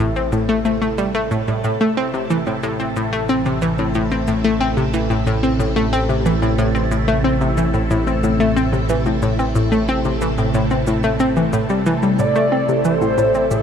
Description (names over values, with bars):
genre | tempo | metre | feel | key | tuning
ambient, sequencer-driven space music | 91 BPM | 4/4 | straight | A minor | A4 = 441 Hz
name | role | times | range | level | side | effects
phased string machine | sustained chords | 0.0-13.6 s | C3 to A4 | -24 LUFS | right 1 dB | ensemble chorus, phaser, shimmer reverb
analog pluck | riff | 0.0-13.6 s | A2 to C4 | -18 LUFS | left 1 dB | chorus, shimmer reverb, tape echo
analog drone | bass | 0.0-13.6 s | A1 | -23 LUFS | right 1 dB | chorus, tube saturation
shaker and woodblock | percussion | 0.2-13.6 s | none | -42 LUFS | right 6 dB | tape echo
pulse-width lead | melody | 12.2-13.6 s | A4 to D5 | -18 LUFS | equal | chorus, shimmer reverb, tape echo
room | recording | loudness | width
moderate huge ambient reverb, RT60 8.0 s | cassette tape | -16 LUFS | side -8 dB against mid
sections
0.0-13.6 A section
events
fade-in on string machine 0.0-13.6; fade-in on drum 0.0-13.6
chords
0.0 Am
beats
0.32 0.98 | 1.64 2.30 2.96 3.62 | 4.28 4.94 5.60 6.26 | 6.92 7.58 8.23 8.89 | 9.55 10.21 10.87 11.53 | 12.19 12.85 13.51